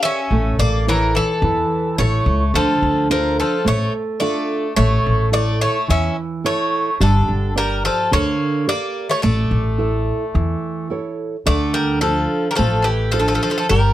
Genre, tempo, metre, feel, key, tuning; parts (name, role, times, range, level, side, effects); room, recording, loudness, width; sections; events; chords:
greek folk, Greek bouzouki band; 108 BPM; 4/4; straight; D harmonic minor; A4 = 440 Hz
Greek bouzouki; melody; 0.0-13.9 s; G4 to E5; -21 LUFS; left 1 dB
nylon-string guitar; accompaniment; 0.0-13.9 s; D3 to E5; -22 LUFS; right 4 dB
Greek bouzouki; second line; 0.1-13.9 s; D3 to C#4; -24 LUFS; left 2 dB
upright bass; bass; 0.3-13.9 s; G1 to E2; -19 LUFS; equal
moderate studio ambience, RT60 0.5 s; -16 LUFS; side -13 dB against mid
0.0-11.5 A section; 11.5-13.9 B section
0.3 A; 2.5 Dm; 4.8 A; 7.0 Gm; 9.2 A; 11.5 Dm